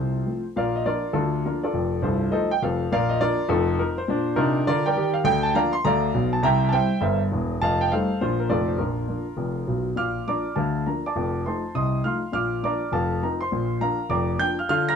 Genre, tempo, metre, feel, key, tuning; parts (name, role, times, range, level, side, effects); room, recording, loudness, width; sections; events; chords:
jazz, stride piano; 204 BPM; 4/4; swing 64% on 8ths; Bb major; A4 = 441 Hz
warm grand piano; solo; 0.0-15.0 s; C1 to Bb6; -21 LUFS; equal
wet studio ambience, RT60 0.5 s; band playing live in one room; -21 LUFS; side -7 dB against mid
0.6-10.0 A section; 10.0-15.0 A section
0.0 F; 0.6 Bb; 1.1 Bb/D; 1.7 F7; 2.9 Bb; 3.5 F7; 4.1 Bb; 5.3 Bb/D; 6.4 C7; 7.6 F9; 8.2 Bb; 8.5 F7; 8.8 Bb; 10.6 Bb/D; 11.1 F7; 12.3 Bb; 12.9 F7; 13.5 Bb